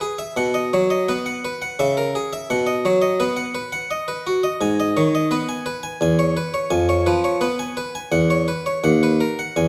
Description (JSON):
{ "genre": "classical, baroque-style suite movement for harpsichord", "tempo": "85 BPM", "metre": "3/4", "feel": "rubato", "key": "B major from 4.6 s", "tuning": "A4 = 439 Hz", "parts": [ { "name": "harpsichord", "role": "solo", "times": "0.0-9.7 s", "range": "D#2 to G#5", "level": "-21 LUFS", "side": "equal", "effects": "none" } ], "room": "moderate recital hall reverb, RT60 1.7 s", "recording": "close, detailed microphones", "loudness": "-21 LUFS", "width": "mono", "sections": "0.0-9.7 A section", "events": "none", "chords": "0.4 B; 1.8 A#dim/C#; 2.5 B; 4.6 G#m; 6.0 C#m7/E; 6.7 C#7/E#; 8.1 F#5/E; 8.8 B/D#" }